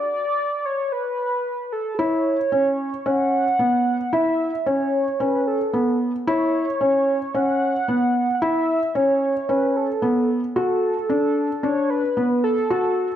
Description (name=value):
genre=electronica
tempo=112 BPM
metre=4/4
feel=straight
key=A major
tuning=A4 = 436 Hz
part: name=warm velvety synth lead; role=melody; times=0.0-13.2 s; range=A4 to F#5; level=-22 LUFS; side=right 1 dB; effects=chorus
part: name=felt-muted upright piano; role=riff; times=2.0-13.1 s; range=B3 to F#4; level=-21 LUFS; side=equal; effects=none
room=wet echo chamber reverb, RT60 1.5 s, small room ambience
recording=high-pass filter, nothing above 10.9 kHz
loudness=-19 LUFS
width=side -10 dB against mid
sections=0.0-2.0 A section; 2.0-13.2 B section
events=break 0.0-2.0; build-up 0.0-2.0; drop 2.0-13.2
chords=0.0 D5; 2.0 A; 10.6 D